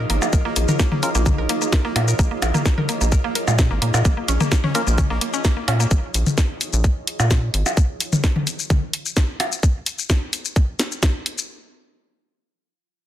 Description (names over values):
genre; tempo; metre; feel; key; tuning
minimal techno; 129 BPM; 4/4; straight; Bb minor; A4 = 438 Hz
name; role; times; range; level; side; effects
rubbery square bass; bass; 0.0-7.6 s; Ab1 to Bb2; -20 LUFS; equal; sidechain pumping
flickering grainy texture; texture; 0.0-7.8 s; F3 to F4; -34 LUFS; equal; built-in reverb, sidechain pumping
warbly tape-like pad; texture; 0.0-7.8 s; Eb4 to Eb5; -31 LUFS; right 2 dB; chorus, built-in reverb, phaser, sidechain pumping
mallet-like synth pluck; riff; 0.1-5.8 s; Ab3 to Bb4; -26 LUFS; right 1 dB; chorus, cassette tape, sidechain pumping, dub echo
garage drum kit; drums; 0.1-11.5 s; hi-hat, shaker, snare drum; -24 LUFS; left 2 dB; studio reverb
electronic percussion blips and toms; percussion; 0.2-9.5 s; none; -23 LUFS; left 1 dB; studio reverb
electronic kick drum; drums; 0.3-11.1 s; none; -18 LUFS; equal; studio reverb
percussive organ stab; stabs; 1.0-1.1, 4.7-4.8 s; Db4 to Bb4; -28 LUFS; left 2 dB; chorus, dub echo
room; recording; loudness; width
digital ambience; dense, heavily limited modern master; -18 LUFS; side -12 dB against mid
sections
0.0-11.5 A section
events
drop 0.0-11.5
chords
0.0 Bbm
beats
| 0.33 0.80 1.26 1.73 | 2.19 2.66 3.12 3.59 | 4.05 4.52 4.98 5.45 | 5.91 6.38 6.84 7.31 | 7.77 8.24 8.70 9.17 | 9.63 10.10 10.56 11.03